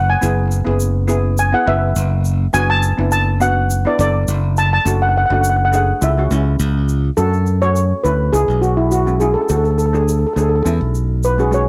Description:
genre	calypso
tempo	104 BPM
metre	4/4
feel	straight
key	F# minor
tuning	A4 = 440 Hz
part	steel pan	melody	0.0-11.7 s	E4 to A5	-20 LUFS	equal	none
part	modern bright fingered electric bass	bass	0.0-11.7 s	F#1 to F#2	-19 LUFS	equal	none
part	steel pan	accompaniment	0.2-11.7 s	G#3 to B4	-26 LUFS	equal	cassette tape
part	egg shaker	percussion	0.2-11.7 s	none	-33 LUFS	equal	none
room	light reverb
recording	home recording on cassette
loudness	-16 LUFS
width	mono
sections	0.0-7.2 A section; 7.2-11.7 B section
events	steel pan solo 7.2-11.7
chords	0.2 E/F#; 2.5 Bm7/F#; 4.9 D/F#; 6.0 C#m; 7.2 F#m; 8.3 C#m7; 9.5 D; 10.7 C#m7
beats	| 0.23 0.81 1.39 1.97 | 2.54 3.12 3.70 4.28 | 4.86 5.44 6.02 6.60 | 7.18 7.76 8.34 8.92 | 9.50 10.08 10.66 11.24

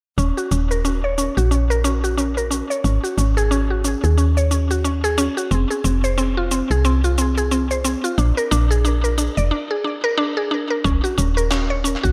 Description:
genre	organic downtempo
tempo	90 BPM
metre	4/4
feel	swing 58% on 16ths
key	Eb dorian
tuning	A4 = 440 Hz
part	mallet-like synth pluck	arpeggios	0.2-12.1 s	C4 to D5	-23 LUFS	equal	chorus, cassette tape, tape echo
part	woody FM bass	bass	0.2-12.1 s	Eb1 to Eb2	-21 LUFS	equal	sidechain pumping
part	electronic cabasa and handclaps	drums	0.2-12.1 s	none	-31 LUFS	equal	overdrive, tape echo
part	electronic kick drum	drums	10.8-12.1 s	none	-24 LUFS	equal	none
room	light reverb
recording	echo-heavy mix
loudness	-19 LUFS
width	mono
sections	0.2-10.8 A section; 10.8-12.1 B section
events	filter sweep on synth pluck 0.2-10.8; break 9.5-10.8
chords	0.2 Ebm7; 2.8 Ab7sus4; 5.5 Fm; 8.2 Bb7; 10.8 Ebm7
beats	| 0.18 0.84 1.51 2.18 | 2.85 3.51 4.18 4.84 | 5.51 6.18 6.84 7.51 | 8.18 8.85 9.51 10.18 | 10.85 11.51

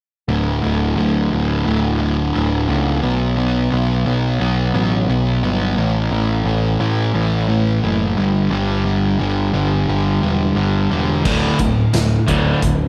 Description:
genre	classic rock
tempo	88 BPM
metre	4/4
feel	straight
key	D major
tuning	A4 = 440 Hz
part	sludgy distorted guitar	riff	0.3-12.9 s	D2 to B3	-20 LUFS	equal	overdrive
part	growling picked electric bass	bass	0.3-12.9 s	D1 to C#2	-22 LUFS	equal	overdrive
part	distorted electric guitar	riff	11.2-12.9 s	D2 to D3	-22 LUFS	equal	distortion
part	big rock drum kit	drums	11.3-12.8 s	crash cymbal, hi-hat, kick drum, snare drum, tambourine	-23 LUFS	equal	none
room	moderate echo chamber reverb, RT60 1.6 s, small room reverb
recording	none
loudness	-18 LUFS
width	mono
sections	0.3-11.3 A section; 11.3-12.9 B section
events	none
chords	0.3 D5; 3.0 B5; 5.8 A5; 8.2 G5; 11.3 D5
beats	| 0.29 0.98 1.66 2.35 | 3.04 3.72 4.41 5.09 | 5.78 6.46 7.15 7.83 | 8.52 9.20 9.88 10.57 | 11.25 11.94 12.62

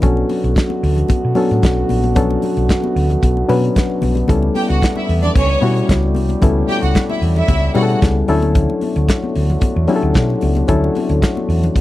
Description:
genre	disco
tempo	112 BPM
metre	4/4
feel	straight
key	B minor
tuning	A4 = 439 Hz
part	reed electric piano	accompaniment	0.0-11.8 s	F#3 to B4	-19 LUFS	left 3 dB	none
part	mellow French horn section	sustained chords	0.0-11.8 s	D3 to C#5	-24 LUFS	right 3 dB	none
part	hollow-body short-scale fingered electric bass	bass	0.0-11.7 s	A#1 to B2	-17 LUFS	equal	none
part	warm soul drum kit	drums	0.0-11.8 s	hi-hat, kick drum, snare drum	-16 LUFS	equal	none
part	congas	percussion	0.0-11.8 s	none	-26 LUFS	left 4 dB	none
part	clear studio string section	second line	4.5-8.0 s	C#4 to G5	-21 LUFS	right 2 dB	none
room	little or no reverb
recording	dry, close 1970s-style studio recording, lossy compression artefacts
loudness	-13 LUFS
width	side -15 dB against mid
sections	0.0-11.8 A section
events	none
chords	0.0 Bm9; 4.3 A9; 8.3 Dmaj7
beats	| 0.03 0.56 1.09 1.62 | 2.16 2.69 3.22 3.76 | 4.29 4.82 5.36 5.89 | 6.42 6.96 7.49 8.02 | 8.55 9.09 9.62 10.15 | 10.69 11.22 11.75

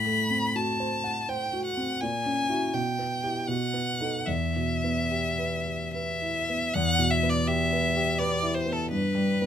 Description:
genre	classical, romantic duo for violin and grand piano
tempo	72-85 BPM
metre	3/4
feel	rubato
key	E minor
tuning	A4 = 440 Hz
part	clear violin	melody	0.0-9.5 s	A4 to B5	-28 LUFS	left 1 dB	none
part	dark grand piano	accompaniment	0.0-9.5 s	E2 to F#5	-28 LUFS	equal	none
room	light reverb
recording	close, detailed microphones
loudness	-25 LUFS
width	side -9 dB against mid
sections	0.0-6.7 A section; 6.7-9.5 B section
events	none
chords	0.0 F#dim/A; 2.0 F#7/A#; 2.7 Em/B; 3.5 B7; 4.3 Em; 8.9 Em/G (rootless)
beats	0.56 1.29 | 2.02 2.74 3.48 | 4.28 5.11 5.94 | 6.74 7.48 8.19 | 8.91

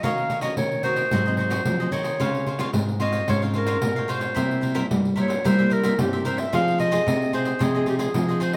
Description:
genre	samba and choro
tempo	111 BPM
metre	4/4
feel	straight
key	F minor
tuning	A4 = 439 Hz
part	warm clarinet	melody	0.0-8.6 s	G4 to F5	-28 LUFS	equal	plate reverb
part	cavaquinho	accompaniment	0.0-8.6 s	E4 to F5	-34 LUFS	equal	none
part	nylon-string guitar	accompaniment	0.0-8.6 s	G2 to Bb4	-32 LUFS	equal	none
part	nylon-string guitar	bass	0.0-8.6 s	Ab2 to G3	-28 LUFS	equal	none
part	pandeiro	percussion	0.0-8.6 s	none	-31 LUFS	equal	none
room	moderate small room reverb, RT60 0.5 s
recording	none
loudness	-23 LUFS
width	mono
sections	0.0-8.6 A section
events	none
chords	0.0 Ebm7; 1.1 Ab7; 2.2 Dbmaj7; 4.4 C7; 6.5 Fm7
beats	| 0.04 0.58 1.12 1.66 | 2.20 2.74 3.29 3.83 | 4.37 4.91 5.45 5.99 | 6.53 7.07 7.61 8.15

